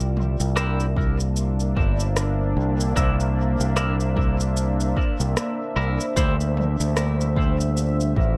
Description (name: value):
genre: ambient dub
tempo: 75 BPM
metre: 4/4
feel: swing 59% on 16ths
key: unclear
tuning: A4 = 440 Hz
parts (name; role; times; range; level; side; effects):
- deep dark ambient pad; sustained chords; 0.0-8.4 s; G3 to E5; -31 LUFS; equal; chorus, built-in reverb
- growling fingered electric bass; bass; 0.0-8.4 s; G1 to D2; -24 LUFS; equal; overdrive
- organic electronic drum kit; drums; 0.0-8.1 s; rim click, shaker, toms; -33 LUFS; equal; small room ambience, dub echo
- clean electric guitar; stabs; 0.6-6.4 s; D4 to C5; -33 LUFS; equal; phaser, dub echo
- electronic kick drum; drums; 1.0-8.4 s; none; -26 LUFS; equal; small room ambience
room: light reverb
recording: none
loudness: -22 LUFS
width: mono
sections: 0.0-8.4 A section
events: none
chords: 0.0 C9; 6.2 Dm11